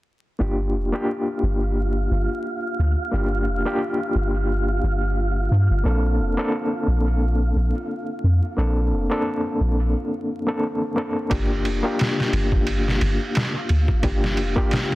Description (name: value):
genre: trip hop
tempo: 88 BPM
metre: 4/4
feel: swing 56% on 16ths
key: G minor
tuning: A4 = 441 Hz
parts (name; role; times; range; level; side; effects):
- overdriven reed electric piano; accompaniment; 0.4-14.9 s; Bb3 to A4; -24 LUFS; left 1 dB; fast tremolo, low-pass filter, tape echo
- soft 808-style bass; bass; 0.4-14.5 s; F1 to G2; -21 LUFS; equal; none
- wind-like tuned noise texture; texture; 1.3-14.9 s; F4; -32 LUFS; right 3 dB; built-in reverb
- trip hop sampler-style drum kit; drums; 11.3-14.9 s; kick drum, ride cymbal, snare drum; -23 LUFS; equal; none
room: digital ambience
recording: dense, heavily limited modern master, vinyl crackle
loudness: -20 LUFS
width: side -18 dB against mid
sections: 0.4-11.3 A section; 11.3-14.9 B section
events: filter sweep on reed electric piano 0.4-11.3; break 9.9-11.3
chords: 0.4 Gm7; 5.9 Bbmaj9; 11.3 Gm7